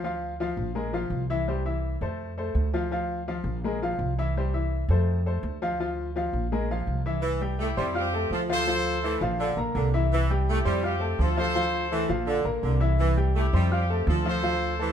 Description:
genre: latin.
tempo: 167 BPM.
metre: 4/4.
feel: straight.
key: C major.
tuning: A4 = 440 Hz.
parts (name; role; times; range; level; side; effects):
bright upright piano; accompaniment; 0.0-14.9 s; E3 to F6; -29 LUFS; left 2 dB; none.
upright bass; bass; 0.0-14.9 s; Bb1 to F2; -27 LUFS; equal; none.
bright saxophone section; second line; 7.2-14.9 s; D3 to A3; -30 LUFS; right 3 dB; none.
bright horn section; melody; 7.6-14.9 s; C4 to C5; -29 LUFS; left 1 dB; none.
room: light reverb.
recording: minimal, uncompressed stereo recording.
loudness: -24 LUFS.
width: side -8 dB against mid.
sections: 0.0-7.2 A section; 7.2-14.9 B section.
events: none.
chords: 0.0 Dm; 0.8 Bb5; 1.5 C; 2.2 F; 2.9 Dm; 3.6 Bb5; 4.4 C; 5.1 F; 5.8 Dm; 6.5 Bb5; 7.2 C; 8.0 Fadd9; 8.7 Dm7; 9.4 Bb; 10.1 C; 10.8 Fadd9; 11.6 Dm7; 12.3 Bb; 13.0 C; 13.7 Fadd9.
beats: | 0.04 0.40 0.76 1.11 | 1.47 1.83 2.19 2.55 | 2.91 3.27 3.63 3.99 | 4.35 4.71 5.07 5.43 | 5.79 6.15 6.51 6.87 | 7.23 7.59 7.95 8.31 | 8.67 9.03 9.39 9.75 | 10.11 10.47 10.83 11.19 | 11.55 11.91 12.27 12.63 | 12.99 13.35 13.71 14.07 | 14.43 14.79.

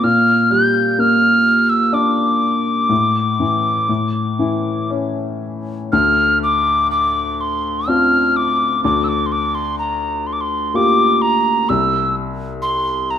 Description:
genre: celtic folk, Celtic slow air.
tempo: 62 BPM.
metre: 3/4.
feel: rubato.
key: D minor.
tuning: A4 = 439 Hz.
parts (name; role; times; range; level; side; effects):
mellow hollow wooden whistle; melody; 0.0-13.2 s; Bb5 to G6; -16 LUFS; equal; none.
clear upright piano; accompaniment; 0.0-13.2 s; C2 to G4; -19 LUFS; left 1 dB; none.
room: moderate recital hall reverb, RT60 1.7 s.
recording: minimal, uncompressed stereo recording.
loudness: -14 LUFS.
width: side -9 dB against mid.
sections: 0.0-5.9 A section; 5.9-13.2 B section.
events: none.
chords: 0.0 Gm/Bb; 2.9 Asus4; 3.9 A; 5.9 Dm7; 8.8 Gm7/D; 11.7 C.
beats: | 0.05 0.99 1.93 | 2.90 3.89 4.90 | 5.92 6.91 7.87 | 8.83 9.78 10.74 | 11.68 12.63.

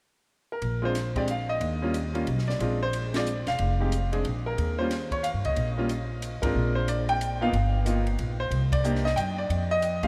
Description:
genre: jazz piano trio.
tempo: 182 BPM.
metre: 3/4.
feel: swing 63% on 8ths.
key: Bb mixolydian.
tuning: A4 = 442 Hz.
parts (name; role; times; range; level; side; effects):
clear concert grand piano; melody; 0.5-10.1 s; G3 to G5; -30 LUFS; equal; none.
upright bass; bass; 0.6-10.1 s; E1 to G2; -30 LUFS; equal; none.
compact cocktail drum kit; drums; 0.6-10.1 s; hi-hat, kick drum, ride cymbal, snare drum; -40 LUFS; equal; none.
room: moderate cathedral reverb, RT60 5.2 s.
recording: in a vast, echoing space.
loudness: -27 LUFS.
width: mono.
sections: 0.6-10.1 A section.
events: band accent 3.1, 6.4, 8.7.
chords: 0.0 N.C.; 0.6 Bb7; 1.6 Eb7; 2.6 Bb7; 3.6 Fm; 4.2 Bb5; 4.6 Eb5; 6.5 Bb7; 7.5 Gm7; 8.5 Cm; 9.5 F7(no3).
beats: 0.29 | 0.62 0.95 1.28 | 1.61 1.94 2.27 | 2.60 2.93 3.26 | 3.59 3.92 4.25 | 4.58 4.91 5.24 | 5.57 5.89 6.22 | 6.55 6.88 7.21 | 7.54 7.86 8.19 | 8.52 8.85 9.18 | 9.50 9.83.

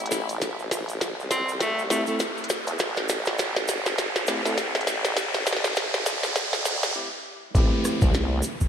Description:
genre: glitch hop.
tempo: 101 BPM.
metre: 4/4.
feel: swing 58% on 16ths.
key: A minor.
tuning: A4 = 440 Hz.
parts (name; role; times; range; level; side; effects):
formant-sweep wobble bass; bass; 0.0-8.4 s; G1 to E2; -31 LUFS; equal; chorus, tube saturation, high-pass filter.
glitchy drum kit; drums; 0.0-8.6 s; hi-hat, rim click, snare drum; -27 LUFS; equal; gated reverb.
riser and downlifter; sound effects; 0.0-8.7 s; none; -30 LUFS; right 1 dB; none.
cabasa; percussion; 0.1-8.7 s; none; -38 LUFS; right 3 dB; none.
electronic kick drum; drums; 0.4-8.7 s; none; -22 LUFS; equal; high-pass filter on kick, high-pass filter on room.
bright tenor saxophone; melody; 1.3-2.2 s; A3 to C4; -30 LUFS; left 1 dB; ping-pong delay.
tine electric piano; stabs; 1.9-8.4 s; A3 to A4; -31 LUFS; equal; sidechain pumping, low-pass filter, ping-pong delay.
room: moderate lush hall reverb, RT60 2.2 s.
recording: bright 1980s-style digital production, vinyl crackle, high-pass filter.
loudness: -23 LUFS.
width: side -8 dB against mid.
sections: 0.0-7.5 A section; 7.5-8.7 B section.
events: build-up 0.0-7.5; drum fill 0.0-7.0; riser 0.0-7.0; filter sweep on tine electric piano 0.0-7.5; break 7.0-7.5; drop 7.5-8.7.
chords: 0.0 Am; 7.5 Am7.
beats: | 0.42 1.01 1.61 2.20 | 2.80 3.39 3.98 4.58 | 5.17 5.77 6.36 6.96 | 7.55 8.14.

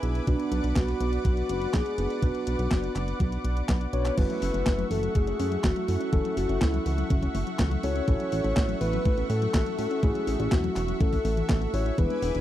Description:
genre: italo disco.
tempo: 123 BPM.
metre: 4/4.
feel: straight.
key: F# minor.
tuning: A4 = 440 Hz.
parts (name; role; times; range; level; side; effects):
lush unison pad; sustained chords; 0.0-12.4 s; A3 to D6; -36 LUFS; equal; chorus.
mellow tine electric piano; stabs; 0.0-12.4 s; A3 to B4; -34 LUFS; right 3 dB; vintage 12-bit sampler grit.
chorused synth bass; bass; 0.0-12.4 s; E1 to A2; -28 LUFS; equal; none.
clean 12-bit digital drum machine; drums; 0.0-12.4 s; crash cymbal, handclaps, hi-hat, snare drum; -33 LUFS; equal; overdrive.
soft octave-layered synth lead; melody; 0.3-12.4 s; D4 to C#5; -31 LUFS; left 2 dB; chorus, tape echo.
electronic kick drum; drums; 0.3-12.1 s; none; -26 LUFS; equal; overdrive.
soft round pluck; arpeggios; 4.2-12.4 s; E3 to E4; -36 LUFS; left 6 dB; chorus, tape echo.
room: little or no reverb.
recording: dry, close 1970s-style studio recording.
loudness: -24 LUFS.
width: side -13 dB against mid.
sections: 0.0-4.2 A section; 4.2-12.4 B section.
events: drum fill 3.7-4.2.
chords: 0.3 Bm; 4.2 F#m7; 8.1 A6.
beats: | 0.27 0.76 1.25 1.74 | 2.22 2.71 3.20 3.69 | 4.18 4.66 5.15 5.64 | 6.13 6.62 7.10 7.59 | 8.08 8.57 9.05 9.54 | 10.03 10.52 11.01 11.49 | 11.98.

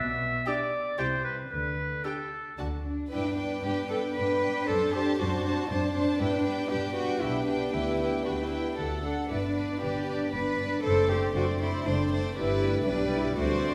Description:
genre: quick classical-period movement for symphony orchestra.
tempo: 116 BPM.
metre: 3/4.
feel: rubato.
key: G major.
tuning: A4 = 440 Hz.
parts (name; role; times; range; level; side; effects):
clear oboe; second line; 0.0-2.6 s; A4 to E5; -32 LUFS; equal; none.
dark chamber double bass section; bass; 0.0-13.7 s; F#1 to G2; -36 LUFS; equal; none.
warm chamber cello section; bass; 0.0-13.7 s; B2 to B4; -34 LUFS; equal; none.
warm chamber violin section; melody; 0.5-13.7 s; D5 to A5; -41 LUFS; equal; none.
warm chamber violin section; second line; 0.5-13.7 s; F#4 to C5; -37 LUFS; equal; none.
warm chamber viola section; accompaniment; 0.5-13.7 s; G3 to A4; -36 LUFS; equal; none.
dark French horn section; sustained chords; 3.1-13.7 s; G3 to G4; -37 LUFS; equal; none.
room: wet recital hall reverb, RT60 1.6 s.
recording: recorded in a church or concert hall.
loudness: -29 LUFS.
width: mono.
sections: 0.0-3.1 A section; 3.1-13.7 B section.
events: none.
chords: 0.0 G/B (rootless); 1.0 C; 1.5 D5; 3.1 G; 4.7 D7/F#; 6.2 G; 7.2 G/B; 7.7 G/D; 8.8 D; 9.3 G; 10.8 D7/F#; 12.4 G; 12.9 G/B.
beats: 0.47 0.98 | 1.51 2.04 2.58 | 3.11 3.63 4.15 | 4.67 5.18 5.70 | 6.20 6.71 7.22 | 7.73 8.25 8.78 | 9.30 9.82 10.33 | 10.84 11.36 11.87 | 12.37 12.88 13.39.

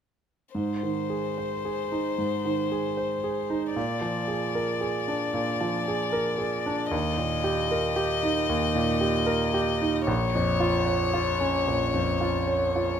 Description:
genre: neoclassical piano and strings.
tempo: 76 BPM.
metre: 4/4.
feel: rubato.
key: Ab major.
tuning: A4 = 437 Hz.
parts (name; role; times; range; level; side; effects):
clear concert grand piano; accompaniment; 0.5-13.0 s; Bb1 to Db5; -26 LUFS; right 3 dB; none.
rich violin; melody; 0.6-13.0 s; C5 to Eb5; -29 LUFS; left 7 dB; none.
room: light reverb.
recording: minimal, uncompressed stereo recording.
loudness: -24 LUFS.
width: side -8 dB against mid.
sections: 0.6-13.0 A section.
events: none.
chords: 0.6 Ab; 3.8 Bb7; 6.9 Eb; 10.1 Bbm.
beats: | 0.55 1.36 2.16 2.96 | 3.76 4.55 5.34 6.13 | 6.92 7.71 8.49 9.28 | 10.08 10.87 11.67 12.48.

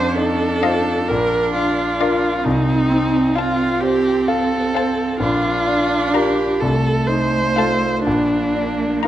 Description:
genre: classical, slow romantic movement for piano quintet.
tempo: 43 BPM (dotted quarters).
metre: 6/8.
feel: rubato.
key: unclear.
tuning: A4 = 440 Hz.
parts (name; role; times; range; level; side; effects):
rich cello; second line; 0.0-9.1 s; A3 to D4; -23 LUFS; right 4 dB; none.
clear concert grand piano; accompaniment; 0.0-9.1 s; Bb1 to F5; -20 LUFS; left 2 dB; none.
rich viola; accompaniment; 0.0-9.1 s; D4 to C5; -19 LUFS; right 1 dB; none.
rich violin; melody; 0.6-9.1 s; F5 to Bb5; -26 LUFS; left 8 dB; none.
rich violin; second line; 0.6-9.1 s; D5 to F5; -29 LUFS; left 6 dB; none.
room: moderate recital hall reverb, RT60 1.4 s.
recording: none.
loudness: -16 LUFS.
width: side -12 dB against mid.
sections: 0.0-9.1 A section.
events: none.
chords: 0.0 F7; 1.1 Bb; 2.5 F7/C; 5.2 Bb; 6.6 F7/C; 8.1 Bb.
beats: 1.09 | 2.45 3.82 | 5.22 6.62 | 8.06.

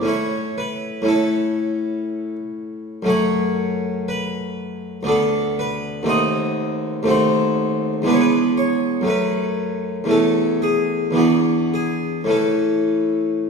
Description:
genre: classical, baroque-style suite movement for harpsichord.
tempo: 60 BPM.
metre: 3/4.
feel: rubato.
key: A major from 3.1 s.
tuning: A4 = 438 Hz.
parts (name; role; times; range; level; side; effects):
harpsichord; solo; 0.0-13.5 s; D2 to D#5; -18 LUFS; equal; none.
room: wet recital hall reverb, RT60 1.4 s.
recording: heard from further back in the room.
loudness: -18 LUFS.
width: side -5 dB against mid.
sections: 0.0-13.5 A section.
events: none.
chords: 0.1 A; 3.1 F#m; 5.1 Bm/D; 6.1 D#dim7; 8.1 E7; 9.1 F#m; 10.1 A/E; 11.2 E7; 12.3 A.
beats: | 0.08 1.06 2.07 | 3.08 4.07 5.07 | 6.07 7.07 8.06 | 9.07 10.10 11.16 | 12.27 13.40.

